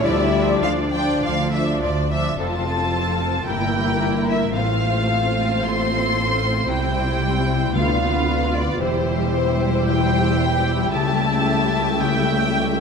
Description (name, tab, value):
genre	classical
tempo	112 BPM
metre	4/4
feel	straight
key	F major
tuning	A4 = 440 Hz
part	rich symphonic violin section	melody	0.0-12.8 s	C5 to C6	-24 LUFS	left 2 dB	none
part	rich symphonic violin section	second line	0.0-12.8 s	E4 to G5	-27 LUFS	equal	none
part	warm studio viola section	accompaniment	0.0-12.8 s	F3 to F4	-25 LUFS	right 1 dB	none
part	clear French horn section	sustained chords	0.0-1.8 s	F3 to G3	-26 LUFS	left 5 dB	none
part	concert harp	arpeggios	0.0-12.8 s	F2 to E5	-26 LUFS	left 9 dB	none
part	rich symphonic double bass section	bass	0.0-12.8 s	E1 to D2	-24 LUFS	right 2 dB	none
part	warm symphonic cello section	bass	0.0-12.8 s	E2 to E4	-30 LUFS	right 2 dB	none
part	timpani	percussion	7.8-8.5 s	D3	-30 LUFS	left 2 dB	none
room	moderate scoring stage reverb, RT60 1.5 s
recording	none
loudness	-18 LUFS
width	side -5 dB against mid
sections	0.0-2.4 A section; 2.4-12.8 B section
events	none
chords	0.0 Dm; 2.4 F; 3.5 Edim/G; 4.5 F/A; 6.7 C; 7.8 Bdim/D; 8.8 C/E; 10.9 A7/C#